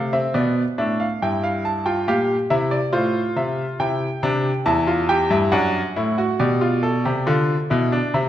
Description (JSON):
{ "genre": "classical, baroque-style 3-part fugue for grand piano", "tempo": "69 BPM", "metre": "3/4", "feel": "straight", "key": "unclear", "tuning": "A4 = 441 Hz", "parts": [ { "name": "bright grand piano", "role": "solo", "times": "0.0-8.3 s", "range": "E2 to A5", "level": "-18 LUFS", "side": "equal", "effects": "none" } ], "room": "wet recital hall reverb, RT60 1.6 s", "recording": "none", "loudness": "-18 LUFS", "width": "side -11 dB against mid", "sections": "0.0-8.3 A section", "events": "none", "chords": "0.4 Asus24; 1.2 C7/G; 2.9 F/A; 3.8 C; 5.5 D/F#; 6.4 G7/B" }